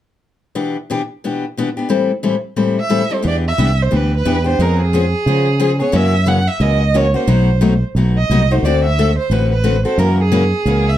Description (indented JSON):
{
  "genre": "acoustic string swing (jazz manouche)",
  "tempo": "178 BPM",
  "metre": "4/4",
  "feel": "swing 60% on 8ths",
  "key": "unclear",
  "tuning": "A4 = 442 Hz",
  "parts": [
    { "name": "picked steel-string acoustic guitar", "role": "accompaniment", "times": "0.6-10.9 s", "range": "A2 to A4", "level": "-18 LUFS", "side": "left 4 dB", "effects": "none" },
    { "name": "rich violin", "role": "melody", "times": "2.8-11.0 s", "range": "G#4 to F#5", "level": "-19 LUFS", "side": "right 3 dB", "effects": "none" },
    { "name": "fretless electric bass", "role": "bass", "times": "3.2-11.0 s", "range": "A1 to C#3", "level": "-15 LUFS", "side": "right 1 dB", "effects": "none" }
  ],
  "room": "moderate studio ambience, RT60 0.5 s",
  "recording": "dark, warm production",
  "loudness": "-13 LUFS",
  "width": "side -12 dB against mid",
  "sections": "0.6-3.2 A section; 3.2-11.0 B section",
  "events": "none",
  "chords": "0.6 Em7/B; 1.9 Am7; 3.2 Em7; 4.6 C#7/E#; 5.9 F#7; 7.3 B7b9; 8.6 D7; 10.0 F#7"
}